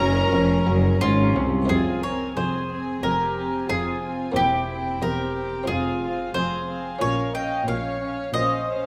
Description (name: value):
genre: classical, baroque-style concerto movement with solo episodes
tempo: 90 BPM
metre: 4/4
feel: straight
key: F minor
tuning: A4 = 441 Hz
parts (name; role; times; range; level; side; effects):
- bowl-back mandolin; melody; 0.0-8.9 s; F4 to G5; -29 LUFS; equal; none
- warm chamber violin section; melody; 0.0-8.9 s; F5 to Bb5; -38 LUFS; equal; none
- warm chamber violin section; second line; 0.0-8.9 s; Db4 to Eb5; -32 LUFS; equal; none
- buff-stop harpsichord; accompaniment; 0.0-8.9 s; E2 to G4; -34 LUFS; equal; none
- dark studio viola section; accompaniment; 0.0-8.9 s; C4 to Db4; -32 LUFS; equal; none
- rich chamber double bass section; bass; 0.0-8.9 s; E1 to C2; -31 LUFS; equal; none
- warm chamber cello section; bass; 0.0-8.9 s; E2 to C3; -30 LUFS; equal; none
room: moderate concert hall reverb, RT60 2.1 s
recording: none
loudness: -23 LUFS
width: mono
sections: 0.0-1.7 A section; 1.7-8.9 B section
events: none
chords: 0.0 Bbm; 1.7 Fm; 4.4 C7/E; 5.7 Fm; 7.0 Bbm